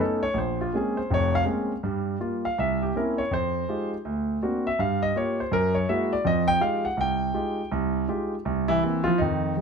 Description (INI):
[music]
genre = solo jazz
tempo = 163 BPM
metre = 4/4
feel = swing 63% on 8ths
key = F minor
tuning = A4 = 440 Hz
[part]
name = warm grand piano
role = solo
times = 0.0-9.6 s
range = F1 to G5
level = -23 LUFS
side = equal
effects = none
[sound]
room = light reverb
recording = close, detailed microphones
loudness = -23 LUFS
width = side -6 dB against mid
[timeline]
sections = 0.0-9.2 A section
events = grand piano solo 0.0-9.2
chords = 0.4 Bbm9; 1.8 Gm7; 2.6 C7b9; 3.3 Fm9; 4.0 Daug7; 4.8 Gm7b5; 5.5 Gb9; 6.3 Fm9; 8.5 C7